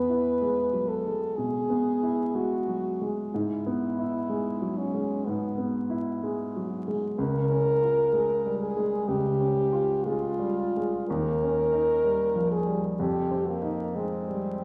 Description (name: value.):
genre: classical, romantic duo for French horn and grand piano.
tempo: 62 BPM.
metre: 4/4.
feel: rubato.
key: E major.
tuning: A4 = 440 Hz.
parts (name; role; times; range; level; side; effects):
warm French horn; melody; 0.0-14.6 s; Bb3 to B4; -30 LUFS; equal; none.
warm grand piano; accompaniment; 0.0-14.6 s; Db2 to F4; -30 LUFS; equal; none.
room: wet recital hall reverb, RT60 1.7 s.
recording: vinyl crackle.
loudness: -27 LUFS.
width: mono.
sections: 0.0-14.6 A section.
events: none.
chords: 0.0 E; 3.3 E/G#; 7.2 Bbm7/Db; 11.1 Eb7; 13.0 Fm7.